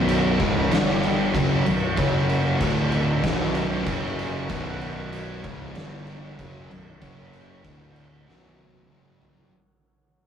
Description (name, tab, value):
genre	stoner and doom metal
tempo	95 BPM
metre	4/4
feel	straight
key	B minor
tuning	A4 = 439 Hz
part	overtone-sweeping drone	sustained chords	0.1-9.5 s	B3 to C#5	-38 LUFS	left 1 dB	none
part	fuzz guitar	riff	0.0-9.5 s	B1 to G3	-29 LUFS	right 4 dB	distortion
part	sludgy distorted guitar	riff	0.0-9.5 s	B1 to G3	-28 LUFS	equal	overdrive
part	thick fuzz guitar	riff	0.0-9.5 s	B1 to G3	-30 LUFS	left 5 dB	distortion
part	fuzz picked electric bass	bass	0.0-9.5 s	B0 to G1	-30 LUFS	equal	overdrive
part	oversized low-tuned drum kit	drums	0.1-9.5 s	crash cymbal, kick drum, snare drum, toms	-26 LUFS	equal	none
room	moderate studio reverb, RT60 0.6 s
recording	rough rehearsal-room recording, tube saturation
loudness	-21 LUFS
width	side -8 dB against mid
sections	0.0-9.5 A section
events	fade-out 0.0-9.5; drum fill 8.3-9.5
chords	0.0 B5; 0.7 G5; 1.3 B5; 2.0 F#5; 2.6 D5; 3.2 B5; 3.9 F#5; 4.5 B5; 5.8 G5; 6.4 B5; 7.0 F#5; 7.7 D5; 8.3 B5; 8.9 F#5